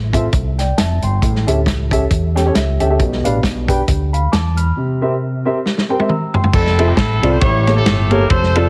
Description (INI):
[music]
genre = uptempo gospel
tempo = 136 BPM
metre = 4/4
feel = swing 56% on 8ths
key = F major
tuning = A4 = 436 Hz
[part]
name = fingered electric bass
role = bass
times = 0.0-8.7 s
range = F1 to E2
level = -19 LUFS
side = equal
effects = none
[part]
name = dark grand piano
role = accompaniment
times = 0.1-8.7 s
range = A2 to F6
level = -21 LUFS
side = equal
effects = none
[part]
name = warm soul drum kit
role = drums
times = 0.1-8.6 s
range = crash cymbal, hi-hat, kick drum, ride cymbal, snare drum, toms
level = -20 LUFS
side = equal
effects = none
[part]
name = clear horn section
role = melody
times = 6.5-8.7 s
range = C4 to C#5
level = -20 LUFS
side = equal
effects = none
[sound]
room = moderate recital hall reverb, RT60 1.4 s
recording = heavily compressed radio sound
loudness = -16 LUFS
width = mono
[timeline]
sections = 0.0-6.5 A section; 6.5-8.7 B section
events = grand piano fill 2.3-3.0; drum fill 5.7-6.5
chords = 0.0 Fmaj7; 1.2 A7; 3.0 G7; 4.8 C7; 6.5 Fmaj7; 7.4 A7b9